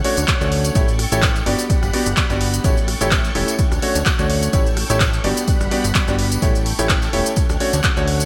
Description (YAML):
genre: piano house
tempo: 127 BPM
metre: 4/4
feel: swing 55% on 16ths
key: A mixolydian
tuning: A4 = 440 Hz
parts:
  - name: string machine, violins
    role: sustained chords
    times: 0.0-8.3 s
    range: G3 to C#6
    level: -32 LUFS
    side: equal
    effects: ensemble chorus, sidechain pumping
  - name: clear concert grand piano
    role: riff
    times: 0.0-8.3 s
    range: A3 to D5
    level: -24 LUFS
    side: equal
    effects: sidechain pumping, digital delay
  - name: punchy analog drum machine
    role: drums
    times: 0.0-8.3 s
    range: handclaps, hi-hat, rim click, shaker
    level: -25 LUFS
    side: equal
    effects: gated reverb
  - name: plucky analog bass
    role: bass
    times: 0.2-8.3 s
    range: E1 to D2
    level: -24 LUFS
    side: equal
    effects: tube saturation, sidechain pumping
  - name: tambourine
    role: percussion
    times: 0.2-8.3 s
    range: none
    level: -36 LUFS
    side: equal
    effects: none
  - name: electronic kick drum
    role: drums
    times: 0.3-7.9 s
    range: none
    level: -22 LUFS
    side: equal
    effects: none
room: moderate lush hall reverb, RT60 1.9 s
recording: bright 1980s-style digital production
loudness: -18 LUFS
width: mono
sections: 0.0-8.3 A section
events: none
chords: 0.0 Dmaj7; 0.8 A7; 1.5 Gmaj7; 2.6 A7; 3.6 Dmaj7; 4.5 A7; 5.2 Gmaj7; 6.4 A7; 7.4 Dmaj7